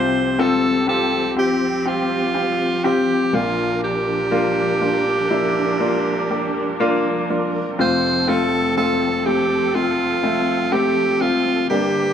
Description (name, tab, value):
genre	pop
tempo	61 BPM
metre	4/4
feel	straight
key	F major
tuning	A4 = 440 Hz
part	edgy alto saxophone	melody	0.0-12.1 s	F4 to C5	-20 LUFS	right 1 dB	none
part	clear baby grand piano	accompaniment	0.0-12.1 s	F1 to E5	-20 LUFS	left 2 dB	none
part	dark studio string section	sustained chords	0.0-12.1 s	D3 to Bb4	-26 LUFS	right 2 dB	none
room	moderate studio reverb, RT60 0.7 s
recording	band playing live in one room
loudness	-17 LUFS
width	side -8 dB against mid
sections	0.0-12.1 A section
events	none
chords	0.0 Csus4; 3.3 Bb; 7.8 F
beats	0.88 1.86 2.84 | 3.82 4.81 5.80 6.80 | 7.79 8.77 9.75 10.72 | 11.70